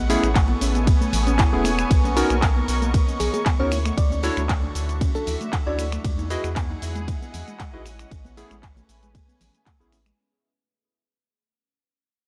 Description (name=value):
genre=deep house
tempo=116 BPM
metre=4/4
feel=swing 53% on 16ths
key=unclear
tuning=A4 = 442 Hz
part: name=deep dark ambient pad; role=sustained chords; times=0.0-10.2 s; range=G#3 to D#5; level=-37 LUFS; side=equal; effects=chorus, built-in reverb, sidechain pumping
part: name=soft round pluck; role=arpeggios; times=0.0-10.1 s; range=G#3 to E4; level=-34 LUFS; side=equal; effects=chorus, cassette tape, sidechain pumping, analog delay
part: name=round analog bass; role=bass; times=0.0-10.1 s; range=E1 to E2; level=-28 LUFS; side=equal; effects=sidechain pumping
part: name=muted studio string section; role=texture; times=0.0-10.2 s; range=D3 to C#6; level=-34 LUFS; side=equal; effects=sidechain pumping
part: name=warm analog keys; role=stabs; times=0.1-10.0 s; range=A3 to D#5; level=-28 LUFS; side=equal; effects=chorus, sidechain pumping, analog delay
part: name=house drum kit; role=drums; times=0.1-10.2 s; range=finger snaps, handclaps, hi-hat, ride cymbal, shaker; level=-32 LUFS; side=equal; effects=none
part: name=electronic kick drum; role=drums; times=0.4-9.8 s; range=none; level=-24 LUFS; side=equal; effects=none
part: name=congas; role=percussion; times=0.5-10.2 s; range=none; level=-38 LUFS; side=equal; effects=none
part: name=bell-like FM electric piano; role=melody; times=3.2-6.0 s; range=G#4 to D5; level=-32 LUFS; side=equal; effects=chorus
room=light reverb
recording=dry, gritty hardware recording, cassette tape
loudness=-22 LUFS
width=mono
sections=0.0-10.2 A section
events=drop 0.0-10.2; fade-out 1.9-10.2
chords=0.0 Amaj9; 1.9 Bmaj9; 3.7 Dmaj9; 6.0 Amaj9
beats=0.35 0.87 1.39 | 1.91 2.42 2.94 3.46 | 3.98 4.49 5.01 5.53 | 6.04 6.56 7.08 7.60 | 8.11 8.63 9.15 9.67